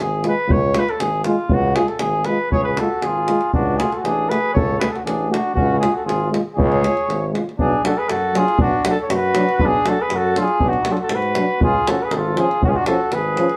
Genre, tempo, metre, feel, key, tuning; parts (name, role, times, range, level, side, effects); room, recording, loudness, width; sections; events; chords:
balkan folk, Balkan brass band; 119 BPM; 2/4; straight; A4 = 440 Hz
warm flugelhorn; melody; 0.0-13.6 s; E#4 to C#5; -23 LUFS; equal
clear tuba; bass; 0.0-13.4 s; G#1 to G#2; -26 LUFS; equal
davul; percussion; 0.0-13.6 s; -25 LUFS; equal
clear French horn; accompaniment; 0.2-13.5 s; C#4 to F#4; -29 LUFS; equal
mellow trombone; accompaniment; 0.2-13.5 s; E#3 to A3; -27 LUFS; equal
warm flugelhorn; second line; 2.5-13.6 s; C#4 to A4; -26 LUFS; equal
moderate studio reverb, RT60 0.8 s; band playing live in one room; -19 LUFS; mono
0.0-7.6 A section; 7.6-13.6 B section
0.0 C#; 3.5 Bm13/A (rootless); 5.6 C#; 7.6 Bm; 11.6 C#